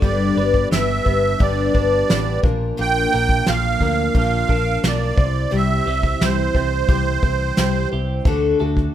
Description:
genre	folk rock and heartland rock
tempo	88 BPM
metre	4/4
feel	straight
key	unclear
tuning	A4 = 439 Hz
part	musette accordion	melody	0.0-7.9 s	C5 to G5	-22 LUFS	right 5 dB	none
part	picked twelve-string acoustic guitar	accompaniment	0.0-8.9 s	G2 to C5	-22 LUFS	left 4 dB	none
part	twelve-string electric guitar	riff	0.0-8.9 s	G2 to G4	-28 LUFS	right 7 dB	phaser
part	picked electric bass	bass	0.0-8.9 s	G1 to D2	-23 LUFS	equal	none
part	soft brush drum kit	drums	0.0-8.9 s	hi-hat, kick drum, snare drum	-20 LUFS	equal	none
room	light reverb, studio ambience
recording	rough home demo mix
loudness	-16 LUFS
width	side -11 dB against mid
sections	0.0-8.9 A section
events	none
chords	0.0 G; 2.4 Bb; 5.2 C; 8.3 D

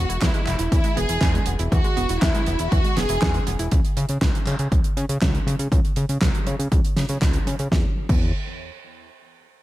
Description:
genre	italo disco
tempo	120 BPM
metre	4/4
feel	straight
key	E major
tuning	A4 = 440 Hz
part	warm symphonic violin section	melody	0.0-3.5 s	E4 to G#4	-26 LUFS	equal	digital delay
part	analog pluck	arpeggios	0.0-3.7 s	E3 to E4	-31 LUFS	right 3 dB	chorus, digital delay
part	fat analog bass	bass	0.0-8.3 s	E1 to C#3	-24 LUFS	equal	digital delay
part	damped 70s drum kit	drums	0.1-8.2 s	crash cymbal, handclaps, hi-hat, snare drum	-27 LUFS	right 1 dB	gated reverb
part	electronic kick drum	drums	0.2-8.2 s	none	-22 LUFS	equal	overdrive
room	little or no reverb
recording	none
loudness	-19 LUFS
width	side -16 dB against mid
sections	0.0-7.7 A section; 7.7-9.6 B section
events	none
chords	0.0 E; 3.7 N.C.

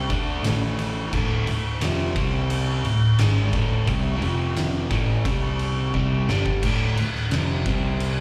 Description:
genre	blues rock power trio and southern rock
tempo	87 BPM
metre	4/4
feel	straight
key	D minor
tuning	A4 = 439 Hz
part	overdriven electric guitar	riff	0.0-8.2 s	D2 to D4	-28 LUFS	equal	slapback echo
part	vintage muted picked electric bass	bass	0.0-8.2 s	D1 to D2	-27 LUFS	equal	none
part	oversized low-tuned drum kit	drums	0.1-8.2 s	crash cymbal, kick drum, ride cymbal, snare drum	-29 LUFS	equal	none
room	small room reverb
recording	live gig heard through the venue's PA, club reverb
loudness	-23 LUFS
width	mono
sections	0.0-6.6 A section; 6.6-8.2 A section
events	drum fill 5.9-6.6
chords	0.1 D5; 0.4 A5; 1.1 Dm; 2.2 C5; 2.9 D5; 4.2 F5; 4.9 A5; 5.3 C5; 5.9 Gsus4; 6.6 Dm; 7.7 C5

